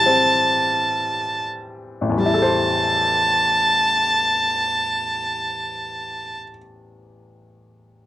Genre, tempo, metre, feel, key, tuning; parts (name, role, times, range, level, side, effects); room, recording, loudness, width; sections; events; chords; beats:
celtic folk, Celtic slow air; 38-47 BPM; 3/4; rubato; A minor; A4 = 440 Hz
clear fiddle; melody; 0.0-6.4 s; A5; -18 LUFS; right 1 dB; cassette tape
clear upright piano; accompaniment; 0.0-8.1 s; A1 to C5; -24 LUFS; left 2 dB; cassette tape
light reverb; home recording on cassette; -17 LUFS; side -14 dB against mid
0.0-2.2 A section; 2.2-6.7 B section
slowing down 0.0-2.2
0.0 Am7
0.73 | 2.21 3.75 5.23